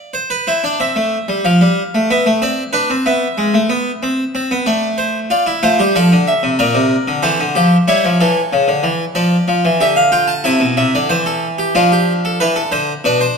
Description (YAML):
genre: classical, baroque-style 3-part fugue for harpsichord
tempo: 93 BPM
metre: 4/4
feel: straight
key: D minor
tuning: A4 = 441 Hz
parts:
  - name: harpsichord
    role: solo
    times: 0.0-13.4 s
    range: Bb2 to A5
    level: -12 LUFS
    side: equal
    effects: none
room: moderate recital hall reverb, RT60 1.6 s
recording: none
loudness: -13 LUFS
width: side -5 dB against mid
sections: 0.0-13.4 A section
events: none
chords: 0.1 Am; 1.4 Dm/F; 2.7 E7; 4.0 Am; 5.3 Dm; 6.6 Gm/Bb; 7.9 A; 9.2 Dm; 10.4 Am; 11.7 Dm/F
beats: | 0.14 0.80 1.45 2.09 | 2.73 3.38 4.02 4.67 | 5.31 5.95 6.59 7.23 | 7.87 8.51 9.15 9.80 | 10.45 11.09 11.74 12.39 | 13.03